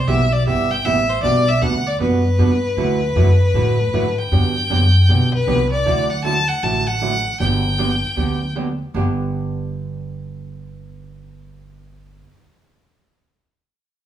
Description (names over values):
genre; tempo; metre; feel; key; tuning
country, western swing; 156 BPM; 4/4; swing 64% on 8ths; G major; A4 = 440 Hz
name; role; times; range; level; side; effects
clear fiddle; melody; 0.0-8.5 s; B4 to A5; -20 LUFS; left 1 dB; none
upright bass; bass; 0.0-12.2 s; G1 to A2; -19 LUFS; equal; none
archtop guitar, miked and amplified; accompaniment; 0.1-12.5 s; G2 to G4; -23 LUFS; right 4 dB; none
room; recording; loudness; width
moderate large studio reverb, RT60 0.9 s; band playing live in one room, small room ambience; -15 LUFS; side -11 dB against mid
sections
0.0-5.9 A section; 5.9-8.9 B section; 8.9-12.0 C section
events
none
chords
0.0 Cmaj7; 1.2 Gmaj7/B; 2.8 Dadd9; 4.3 Gmaj7; 5.9 Dadd9; 7.4 Gmaj7; 8.9 G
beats
0.08 0.47 0.85 | 1.24 1.62 2.01 2.39 | 2.78 3.16 3.55 3.93 | 4.32 4.70 5.09 5.47 | 5.86 6.25 6.63 7.02 | 7.40 7.79 8.17 8.56 | 8.94 9.33 9.71 10.10 | 10.48 10.87 11.25 11.64